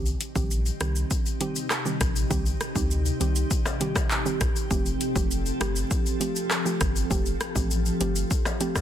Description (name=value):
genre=dancehall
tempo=100 BPM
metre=4/4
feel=straight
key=C dorian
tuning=A4 = 439 Hz
part: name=soft round pluck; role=accompaniment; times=0.0-8.8 s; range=Eb3 to G4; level=-32 LUFS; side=right 4 dB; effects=chorus
part: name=glassy FM pad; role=sustained chords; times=0.3-8.8 s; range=C3 to A4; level=-31 LUFS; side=left 2 dB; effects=ensemble chorus, built-in reverb, sidechain pumping
part: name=punchy sub bass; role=bass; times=0.0-8.2 s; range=F1 to D2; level=-28 LUFS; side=equal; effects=none
part: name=deep house drum kit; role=drums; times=0.1-8.8 s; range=handclaps, hi-hat, kick drum, rim click, shaker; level=-26 LUFS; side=equal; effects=overdrive
part: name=tube shaker and timbales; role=percussion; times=0.1-8.8 s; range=none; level=-36 LUFS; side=left 9 dB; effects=none
room=little or no reverb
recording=dense, heavily limited modern master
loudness=-23 LUFS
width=side -10 dB against mid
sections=0.0-8.8 A section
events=none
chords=0.0 Cm; 4.7 Fadd9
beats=0.51 1.11 1.71 | 2.31 2.91 3.51 4.11 | 4.71 5.31 5.91 6.51 | 7.11 7.71 8.31